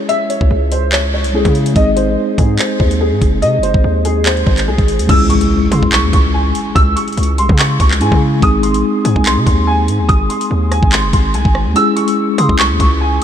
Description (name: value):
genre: hip hop, drill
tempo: 144 BPM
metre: 4/4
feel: half-time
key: C# harmonic minor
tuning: A4 = 440 Hz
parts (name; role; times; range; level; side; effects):
- dark upright piano; melody; 0.0-13.2 s; G#4 to E6; -17 LUFS; equal; analog chorus, low-pass filter, ping-pong delay
- mellow tine electric piano; accompaniment; 0.0-13.2 s; G#3 to G#4; -18 LUFS; left 2 dB; medium stereo tremolo, low-pass filter
- drill drum kit; drums; 0.1-13.2 s; crash cymbal, handclaps, hi-hat, kick drum, rim click; -15 LUFS; equal; vintage 12-bit sampler grit
- distorted 808-style bass; bass; 0.4-13.2 s; F#1 to C#3; -16 LUFS; equal; distortion
- impact; sound effects; 5.1-6.8 s; none; -22 LUFS; equal; none
- soft synth bell; second line; 11.8-13.2 s; C#6 to E6; -25 LUFS; right 4 dB; chorus, phaser, ping-pong delay
room: light reverb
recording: none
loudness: -11 LUFS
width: side -9 dB against mid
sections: 0.0-5.1 A section; 5.1-13.2 B section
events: impact 5.1-6.8; kick muted 11.8-12.2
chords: 0.0 C#m; 1.8 G#; 5.1 C#m; 8.4 G#; 11.8 C#m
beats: | 0.09 0.51 0.92 1.34 | 1.76 2.17 2.59 3.01 | 3.42 3.84 4.26 4.67 | 5.09 5.51 5.92 6.34 | 6.76 7.17 7.59 8.01 | 8.42 8.84 9.26 9.67 | 10.09 10.51 10.92 11.34 | 11.76 12.17 12.59 13.01